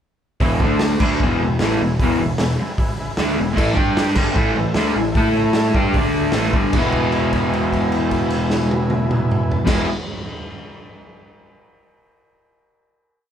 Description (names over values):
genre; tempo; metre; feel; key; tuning
garage rock duo or trio; 151 BPM; 4/4; straight; E mixolydian; A4 = 440 Hz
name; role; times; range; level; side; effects
overdriven combo organ; sustained chords; 0.4-9.8 s; G4 to B5; -30 LUFS; left 2 dB; none
crunchy overdriven guitar; riff; 0.4-9.9 s; E2 to A4; -18 LUFS; equal; none
growling picked electric bass; bass; 0.4-9.8 s; E1 to A2; -26 LUFS; equal; overdrive, tube saturation
raw garage drum kit; drums; 0.4-9.8 s; crash cymbal, hi-hat, kick drum, snare drum, toms; -21 LUFS; equal; none
room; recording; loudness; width
moderate large studio reverb, RT60 1.1 s; band playing live in one room; -16 LUFS; side -9 dB against mid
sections
0.4-6.7 riff; 6.7-9.9 final chord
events
held note 6.7-9.7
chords
0.4 E; 0.6 D5; 1.0 E; 3.6 A5; 3.8 G5; 4.2 A5; 6.0 D5; 6.3 A5; 6.7 E